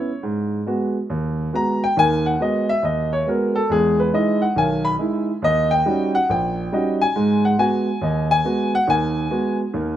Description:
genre	solo jazz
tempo	139 BPM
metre	4/4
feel	swing 65% on 8ths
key	G# minor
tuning	A4 = 440 Hz
part	warm grand piano	solo	0.0-10.0 s	A#1 to B5	-18 LUFS	equal	none
room	light reverb, small room ambience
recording	rough home demo mix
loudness	-18 LUFS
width	side -11 dB against mid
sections	0.0-10.0 A section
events	grand piano solo 0.0-10.0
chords	0.2 G#m7; 3.7 Emaj7; 5.4 D#7#9; 7.2 G#m7

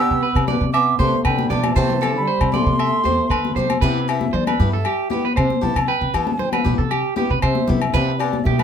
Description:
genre	highlife guitar band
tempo	117 BPM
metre	4/4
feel	straight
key	C major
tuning	A4 = 440 Hz
part	mellow silver concert flute	melody	0.0-8.6 s	D5 to E6	-23 LUFS	right 1 dB	none
part	breathy trombone	second line	0.0-3.6 s	D3 to B3	-26 LUFS	right 6 dB	none
part	picked swing-style acoustic guitar	accompaniment	0.0-8.4 s	E3 to G4	-28 LUFS	left 4 dB	none
part	electric guitar at the edge of break-up	arpeggios	0.0-8.6 s	G4 to E5	-24 LUFS	right 6 dB	none
part	upright bass	bass	0.1-8.6 s	E2 to E3	-21 LUFS	equal	none
part	agogo bells	percussion	0.4-8.6 s	none	-26 LUFS	left 7 dB	none
part	congas	percussion	0.5-8.6 s	none	-25 LUFS	left 4 dB	none
room	moderate small room reverb, RT60 0.5 s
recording	band playing live in one room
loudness	-16 LUFS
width	side -8 dB against mid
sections	0.0-3.8 A section; 3.8-8.6 B section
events	flute solo 3.8-8.6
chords	0.0 G/C; 1.8 Am7/C; 3.8 Cmaj7; 7.9 G7

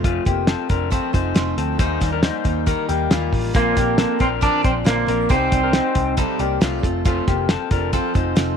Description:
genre	jangly indie pop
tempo	137 BPM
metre	4/4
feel	straight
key	unclear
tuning	A4 = 440 Hz
part	picked steel-string acoustic guitar	accompaniment	0.0-8.6 s	Bb2 to D5	-26 LUFS	right 14 dB	none
part	electric guitar through a small old amp	arpeggios	0.0-8.6 s	A3 to D5	-24 LUFS	left 16 dB	tape echo
part	vintage muted picked electric bass	bass	0.0-8.5 s	F1 to Eb2	-25 LUFS	equal	none
part	cloth-damped thuddy drum kit	drums	0.0-8.5 s	hi-hat, kick drum, snare drum	-20 LUFS	equal	none
part	electric guitar through a small old amp	melody	3.6-6.1 s	Bb3 to D4	-20 LUFS	right 1 dB	none
part	breathy trumpet	second line	3.6-6.1 s	Bb4 to D5	-29 LUFS	right 12 dB	none
room	small room ambience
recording	1960s-style stereo with parts hard left and right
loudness	-17 LUFS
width	side -7 dB against mid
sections	0.0-8.6 A section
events	none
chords	0.0 F; 1.8 Eb; 3.5 Bbadd9; 5.3 Cmadd9; 6.8 F

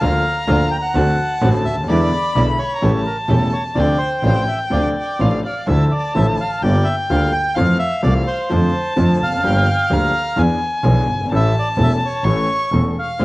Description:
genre	tango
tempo	128 BPM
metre	4/4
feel	rubato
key	D minor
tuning	A4 = 442 Hz
part	bandoneon	melody	0.0-13.2 s	A4 to G5	-22 LUFS	right 1 dB	none
part	dark violin	second line	0.0-13.2 s	D5 to C#6	-23 LUFS	left 1 dB	cassette tape, plate reverb
part	clear concert grand piano	accompaniment	0.0-13.2 s	E1 to A4	-21 LUFS	left 1 dB	cassette tape
part	dark studio string section	stabs	0.0-5.4, 13.2 s	G#3 to G4	-27 LUFS	right 2 dB	none
part	clear double bass	bass	0.0-13.2 s	E1 to F2	-18 LUFS	right 1 dB	none
room	moderate small room reverb, RT60 0.5 s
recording	home recording on cassette, vinyl crackle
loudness	-15 LUFS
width	side -20 dB against mid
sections	0.0-5.7 A section; 5.7-13.2 B section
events	none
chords	0.0 Bb/D; 1.0 D7; 1.9 E7; 2.8 A7; 3.8 Dm7; 5.7 Dmadd9; 6.6 Gm7; 7.6 Fmaj7; 8.5 Dm7/F; 9.4 Gm7; 10.4 E7; 11.3 A

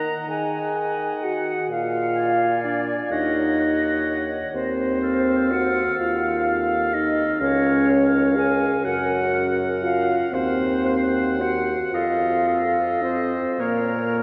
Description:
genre	classical, slow romantic movement for wind quintet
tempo	34-43 BPM (dotted quarters)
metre	6/8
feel	rubato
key	Bb minor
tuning	A4 = 440 Hz
part	silver concert flute	melody	0.0-14.2 s	Bb4 to Bb5	-28 LUFS	equal	none
part	clear oboe	second line	0.0-14.2 s	Db5 to Ab5	-32 LUFS	equal	none
part	clear clarinet	accompaniment	0.0-14.2 s	A4 to Eb5	-35 LUFS	equal	none
part	dark French horn	accompaniment	0.0-14.2 s	Bb3 to Bb4	-25 LUFS	equal	none
part	warm bassoon	bass	0.0-14.2 s	Db2 to Eb3	-30 LUFS	equal	none
room	wet cathedral reverb, RT60 4.7 s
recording	dark, warm production, nothing above 7.8 kHz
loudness	-22 LUFS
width	mono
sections	0.0-14.2 A section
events	none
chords	0.0 Ebm; 1.7 Bb7; 3.1 Ebm7; 4.5 F7/Eb; 7.4 Bbm/Db; 8.9 Gb; 10.3 Cdim/Eb; 11.9 F7; 13.6 Bbm

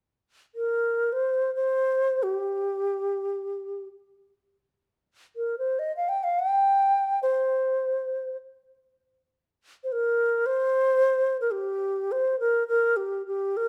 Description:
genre	chinese traditional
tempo	free time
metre	none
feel	none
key	unclear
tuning	A4 = 440 Hz
part	xiao	melody	0.6-13.7 s	G4 to G5	-26 LUFS	equal	none
room	light reverb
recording	none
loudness	-26 LUFS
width	mono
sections	0.0-11.5 A section; 11.5-13.7 B section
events	none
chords	none

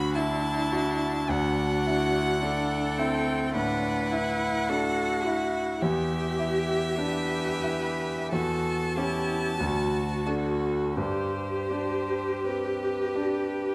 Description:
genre	classical, slow romantic movement for piano quartet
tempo	40-54 BPM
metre	4/4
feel	rubato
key	unclear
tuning	A4 = 438 Hz
part	rich violin	melody	0.0-13.7 s	A4 to B5	-35 LUFS	equal	none
part	clear cello	second line	0.0-13.7 s	D4 to B4	-34 LUFS	equal	none
part	bright concert grand piano	accompaniment	0.0-13.7 s	D2 to G4	-32 LUFS	equal	none
part	clear viola	accompaniment	0.0-13.7 s	C4 to G4	-34 LUFS	equal	none
room	wet recital hall reverb, RT60 1.4 s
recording	none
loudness	-28 LUFS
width	mono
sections	0.0-13.7 A section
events	none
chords	0.0 D; 1.3 D9; 5.8 Em; 8.3 A7/E; 9.6 D; 11.0 G

